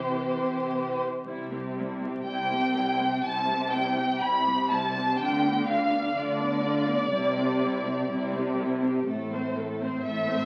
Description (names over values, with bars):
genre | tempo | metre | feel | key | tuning
classical, slow romantic movement for string orchestra | 61 BPM | 4/4 | rubato | C major | A4 = 436 Hz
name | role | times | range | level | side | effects
rich studio violin section | melody | 0.0-10.5 s | C5 to B5 | -33 LUFS | equal | none
rich studio violin section | second line | 0.0-10.5 s | G4 to B5 | -32 LUFS | equal | none
clear studio viola section | accompaniment | 0.0-10.5 s | E3 to C5 | -34 LUFS | equal | none
rich studio cello section | bass | 0.0-10.5 s | A2 to D3 | -33 LUFS | equal | none
warm studio double bass section | bass | 1.3-10.5 s | A1 to D2 | -41 LUFS | equal | none
room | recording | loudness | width
wet stone room reverb, RT60 0.9 s | very old 78 rpm record, vinyl crackle | -27 LUFS | mono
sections
0.0-1.3 A section; 1.3-10.5 B section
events
none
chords
0.0 C; 5.2 Bdim/D; 7.1 C; 9.1 Am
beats
0.19 | 1.26 2.27 3.25 4.23 | 5.21 6.16 7.14 8.11 | 9.08 10.06